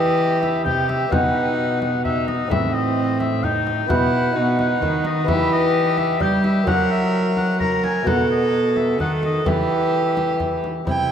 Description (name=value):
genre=classical, renaissance-style consort dance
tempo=130 BPM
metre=3/4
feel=straight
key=E harmonic minor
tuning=A4 = 439 Hz
part: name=clear oboe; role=melody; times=0.0-11.1 s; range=E4 to A#5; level=-24 LUFS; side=left 4 dB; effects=none
part: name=rich violin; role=second line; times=0.0-11.1 s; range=C4 to G5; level=-23 LUFS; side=right 2 dB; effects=none
part: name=lute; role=accompaniment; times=0.0-11.1 s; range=A2 to C5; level=-24 LUFS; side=left 1 dB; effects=none
part: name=rich cello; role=bass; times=0.0-11.1 s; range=A2 to G3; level=-23 LUFS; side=right 1 dB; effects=none
part: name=frame drum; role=percussion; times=0.4-11.1 s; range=none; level=-28 LUFS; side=left 2 dB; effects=none
room=wet cathedral reverb, RT60 5.2 s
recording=in a vast, echoing space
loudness=-17 LUFS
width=side -8 dB against mid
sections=0.0-10.9 A section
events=none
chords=0.0 Em; 1.1 B; 2.5 Am; 3.9 Bsus4; 4.4 B; 5.3 Em; 6.7 F#7; 8.1 B7; 9.5 Em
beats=0.19 0.66 | 1.12 1.59 2.05 | 2.51 2.97 3.44 | 3.90 4.36 4.82 | 5.28 5.75 6.21 | 6.67 7.13 7.59 | 8.06 8.53 8.99 | 9.46 9.93 10.41 | 10.88